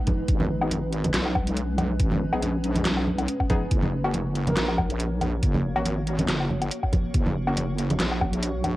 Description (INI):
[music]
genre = deep dubstep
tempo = 140 BPM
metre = 4/4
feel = swing 55% on 16ths, half-time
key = unclear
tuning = A4 = 444 Hz
[part]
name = granular cloud pad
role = sustained chords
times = 0.0-8.8 s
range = G#3 to C#5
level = -33 LUFS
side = equal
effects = built-in reverb, vintage 12-bit sampler grit, cassette tape
[part]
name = dubstep drum kit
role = drums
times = 0.1-8.7 s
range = handclaps, hi-hat, snare drum, woodblock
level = -28 LUFS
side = left 1 dB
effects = cassette tape
[part]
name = electronic kick drum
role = drums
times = 0.1-8.3 s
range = none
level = -24 LUFS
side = equal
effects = cassette tape
[part]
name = congas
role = percussion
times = 0.1-8.7 s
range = none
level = -30 LUFS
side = right 1 dB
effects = none
[part]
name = wobble bass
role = bass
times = 0.3-8.8 s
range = F#1 to B1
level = -26 LUFS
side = equal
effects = chorus, tube saturation
[part]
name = filtered dub chord stab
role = stabs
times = 0.6-7.5 s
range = A#3 to G#4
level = -34 LUFS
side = left 2 dB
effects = chorus, cassette tape, dub echo
[part]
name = breathy flute-like synth lead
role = melody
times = 4.5-4.8 s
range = A#4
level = -34 LUFS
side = equal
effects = chorus, dub echo
[sound]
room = light reverb, digital ambience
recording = home recording on cassette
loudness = -22 LUFS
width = side -17 dB against mid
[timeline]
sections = 0.0-8.8 A section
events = none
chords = 0.0 G#m; 3.7 F#